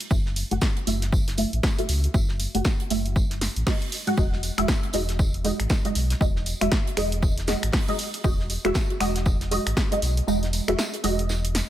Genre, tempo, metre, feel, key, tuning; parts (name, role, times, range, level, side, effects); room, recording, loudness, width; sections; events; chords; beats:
deep house; 118 BPM; 4/4; swing 59% on 16ths; A4 = 443 Hz
punchy analog drum machine; drums; 0.0-11.7 s; finger snaps, hi-hat, snare drum; -29 LUFS; equal
filtered dub chord stab; stabs; 0.1-11.5 s; G#3 to F#5; -28 LUFS; right 1 dB; phaser, ensemble chorus, sidechain pumping, tape echo
sub bass with octave; bass; 0.1-11.6 s; E1 to C#2; -26 LUFS; equal; tube saturation, sidechain pumping
damped 70s drum kit; drums; 0.1-11.7 s; hi-hat, snare drum, tambourine; -36 LUFS; right 2 dB; high-pass filter on hats, high-pass filter on snare, high-pass filter on perc, high-pass filter on room
electronic kick drum; drums; 0.1-9.9 s; -23 LUFS; equal
light reverb, small room reverb; -22 LUFS; side -12 dB against mid
0.0-11.7 A section
filter sweep on synth stab 0.0-11.7; kick drops out 10.3-11.7
0.0 F#m7; 3.9 Emaj9
| 0.11 0.62 1.12 1.63 | 2.14 2.65 3.16 3.67 | 4.17 4.68 5.19 5.70 | 6.21 6.72 7.23 7.73 | 8.24 8.75 9.26 9.77 | 10.28 10.79 11.29